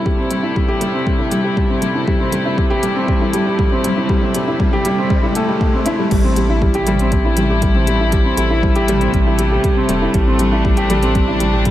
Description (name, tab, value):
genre	piano and strings electronica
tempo	119 BPM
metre	4/4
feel	straight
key	A minor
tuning	A4 = 440 Hz
part	rich chamber string section	sustained chords	0.0-11.7 s	C3 to E4	-21 LUFS	left 1 dB	sidechain pumping
part	felt-muted upright piano	riff	0.0-11.7 s	G3 to G4	-17 LUFS	equal	tape echo
part	riser	sound effects	2.5-6.1 s	none	-29 LUFS	left 1 dB	none
part	electronic kick drum	drums	0.1-11.7 s	none	-18 LUFS	equal	overdrive
part	organic electronic drum kit	drums	0.3-11.7 s	crash cymbal, hi-hat, toms	-27 LUFS	equal	none
part	round analog bass	bass	6.1-11.7 s	E1 to A1	-19 LUFS	equal	sidechain pumping
room	light reverb, digital ambience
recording	none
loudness	-14 LUFS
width	side -13 dB against mid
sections	0.0-6.1 A section; 6.1-11.7 B section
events	build-up 0.0-6.1; riser 2.5-6.1; drop 6.1-11.7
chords	0.0 Am7